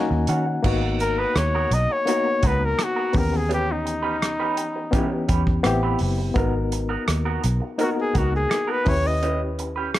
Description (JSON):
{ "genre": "lush 1970s-style soul", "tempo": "84 BPM", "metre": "4/4", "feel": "straight", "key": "G# minor", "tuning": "A4 = 439 Hz", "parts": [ { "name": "barky reed electric piano", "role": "accompaniment", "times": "0.0-10.0 s", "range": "E3 to A#5", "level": "-26 LUFS", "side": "left 3 dB", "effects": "overdrive, fast tremolo" }, { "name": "warm French horn section", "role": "sustained chords", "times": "0.0-0.6 s", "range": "none", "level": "barely audible", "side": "none", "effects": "none" }, { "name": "electric guitar through a small old amp", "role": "riff", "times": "0.1-10.0 s", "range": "B3 to C#5", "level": "-30 LUFS", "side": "right 6 dB", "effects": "wah, spring reverb" }, { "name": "vintage muted fingered electric bass", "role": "bass", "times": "0.1-10.0 s", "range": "F#1 to D#3", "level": "-24 LUFS", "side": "equal", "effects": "none" }, { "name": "warm soul drum kit", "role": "drums", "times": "0.3-10.0 s", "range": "crash cymbal, hi-hat, kick drum, rim click", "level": "-26 LUFS", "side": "right 1 dB", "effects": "none" }, { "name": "warm flugelhorn", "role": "melody", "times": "1.0-9.4 s", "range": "D#4 to D#5", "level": "-24 LUFS", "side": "left 2 dB", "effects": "none" } ], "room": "light reverb, studio ambience", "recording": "none", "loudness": "-20 LUFS", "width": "side -14 dB against mid", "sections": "0.6-10.0 A section", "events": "reed electric piano fill 0.0-0.6; flugelhorn solo 0.6-10.0", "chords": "0.0 D#m7; 0.6 G#m9; 3.1 D#7b9b13; 5.7 Am9; 6.4 G#m9; 8.9 D#7b9b13", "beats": "| 0.64 1.36 2.07 2.79 | 3.50 4.22 4.94 5.65 | 6.37 7.08 7.80 8.51 | 9.23 9.94" }